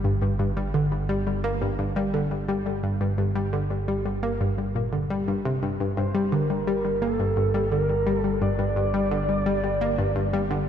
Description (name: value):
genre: ambient, sequencer-driven space music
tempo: 86 BPM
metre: 4/4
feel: straight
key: G minor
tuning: A4 = 443 Hz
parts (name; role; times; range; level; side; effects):
- analog pluck; riff; 0.0-10.6 s; G2 to Bb3; -24 LUFS; left 1 dB; chorus, ping-pong delay
- analog drone; bass; 0.0-10.7 s; G1; -30 LUFS; right 1 dB; chorus
- pulse-width lead; melody; 6.0-10.7 s; A4 to D5; -27 LUFS; right 1 dB; chorus, ping-pong delay
room: wet lush hall reverb, RT60 2.8 s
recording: dreamy mix soaked in reverb, nothing above 10.7 kHz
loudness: -23 LUFS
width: side -9 dB against mid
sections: 0.0-10.7 A section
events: none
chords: 0.0 Gm